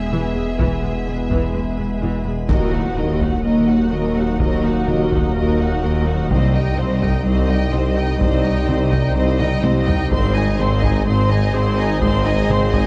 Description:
cinematic, hybrid orchestral and electronic film score; 126 BPM; 4/4; straight; Eb dorian; A4 = 436 Hz
warm symphonic violin section; melody; 0.0-12.9 s; Eb5 to C6; -31 LUFS; equal
warm symphonic violin section; second line; 0.0-12.9 s; Gb4 to Eb5; -30 LUFS; equal
mellow French horn section; sustained chords; 0.0-12.9 s; Gb3 to Eb4; -29 LUFS; equal
organ-like drone; sustained chords; 0.0-12.9 s; Gb3 to Eb5; -33 LUFS; equal
thumb-piano-like synth pluck; arpeggios; 0.0-12.9 s; C3 to Ab4; -30 LUFS; equal
detuned saw bass; bass; 0.0-12.9 s; Eb1 to C2; -27 LUFS; equal
warm symphonic viola section; accompaniment; 0.1-12.9 s; E3 to Gb4; -31 LUFS; equal
warm symphonic cello section; bass; 0.1-12.9 s; C2 to Ab2; -26 LUFS; equal
warm symphonic double bass section; bass; 0.1-12.9 s; E1 to Eb2; -27 LUFS; equal
taiko ensemble; drums; 0.6-12.9 s; -26 LUFS; equal
clear tuba; bass; 2.5-12.9 s; Ab1 to Eb2; -27 LUFS; equal
impact; sound effects; 2.5-4.4 s; -30 LUFS; equal
moderate scoring stage reverb, RT60 2.1 s; dark, warm production; -18 LUFS; mono
0.0-2.5 A section; 2.5-12.9 A section
impact 2.5-4.4; drum fill 9.4-10.1
0.0 E; 2.5 Ebm; 6.3 Cm; 10.1 Ab

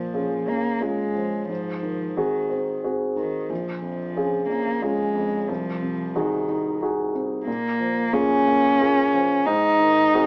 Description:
neoclassical piano and strings; 90 BPM; 3/4; rubato; Bb minor; A4 = 440 Hz
dark cello; second line; 0.0-10.3 s; Eb3 to Eb4; -25 LUFS; equal
dark grand piano; accompaniment; 0.0-10.3 s; Bb1 to Ab4; -27 LUFS; equal
moderate large studio reverb, RT60 0.9 s; small speaker sound; -23 LUFS; mono
0.0-10.3 A section
0.0 Bbm7; 1.5 Ab7; 3.5 Bbm7; 5.5 Ab7/C; 7.5 Bbm7; 9.5 Ab7

